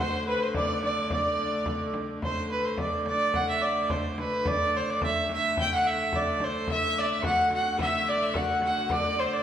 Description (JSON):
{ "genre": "medieval dance", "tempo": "108 BPM", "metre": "2/4", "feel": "straight", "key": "D mixolydian", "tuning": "A4 = 440 Hz", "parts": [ { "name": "rich fiddle", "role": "melody", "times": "0.0-9.4 s", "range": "B4 to G5", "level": "-26 LUFS", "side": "right 1 dB", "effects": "none" }, { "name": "warm viola da gamba", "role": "second line", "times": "0.0-1.9, 6.7-9.4 s", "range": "F#4 to E5", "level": "-31 LUFS", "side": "left 3 dB", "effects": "none" }, { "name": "rich hurdy-gurdy", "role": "drone", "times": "0.0-9.4 s", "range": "D3 to A3", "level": "-34 LUFS", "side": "left 1 dB", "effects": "none" }, { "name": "frame drum", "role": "percussion", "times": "0.5-9.2 s", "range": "none", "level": "-34 LUFS", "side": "left 1 dB", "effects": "none" } ], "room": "wet recital hall reverb, RT60 1.6 s", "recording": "recorded in a church or concert hall", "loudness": "-24 LUFS", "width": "side -10 dB against mid", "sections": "0.0-2.2 A section; 2.2-9.4 A section", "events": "none", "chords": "none" }